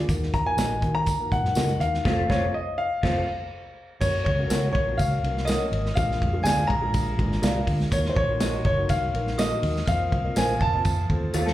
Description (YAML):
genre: uptempo 1960s-style soul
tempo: 123 BPM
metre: 4/4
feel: straight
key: unclear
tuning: A4 = 440 Hz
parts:
  - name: dark upright piano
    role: accompaniment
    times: 0.0-11.5 s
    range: Gb3 to Eb5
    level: -33 LUFS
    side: left 1 dB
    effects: slapback echo
  - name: electric guitar through a small old amp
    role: riff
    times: 0.0-3.2, 11.3-11.5 s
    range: A3 to A4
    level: -31 LUFS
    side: left 4 dB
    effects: lush chorus, slapback echo
  - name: vintage muted fingered electric bass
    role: bass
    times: 0.0-11.5 s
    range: F1 to Eb3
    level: -26 LUFS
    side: equal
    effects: none
  - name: warm soul drum kit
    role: drums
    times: 0.1-11.5 s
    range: crash cymbal, hi-hat, kick drum, ride cymbal, snare drum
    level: -28 LUFS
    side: equal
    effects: none
  - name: tambourine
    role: percussion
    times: 0.1-11.5 s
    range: none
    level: -39 LUFS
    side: left 1 dB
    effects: none
  - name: warm concert grand piano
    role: melody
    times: 0.3-11.5 s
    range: C5 to Bb5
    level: -27 LUFS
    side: equal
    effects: slapback echo
  - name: electric guitar through a small old amp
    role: stabs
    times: 0.6-11.5 s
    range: Gb4 to Gb5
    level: -32 LUFS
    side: right 2 dB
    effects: spring reverb, slapback echo
  - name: glockenspiel with brass mallets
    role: second line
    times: 4.0-11.5 s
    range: C6 to Bb6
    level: -40 LUFS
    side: left 1 dB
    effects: slapback echo
room: small room ambience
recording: live gig heard through the venue's PA, club reverb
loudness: -22 LUFS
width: side -14 dB against mid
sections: 0.0-4.0 A section; 4.0-11.5 B section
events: band accent 2.1-4.0; drum fill 11.3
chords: 0.1 Ebm; 2.1 F; 4.0 Gb; 6.0 Bb7; 7.9 Ebm; 9.9 Fsus4; 10.9 F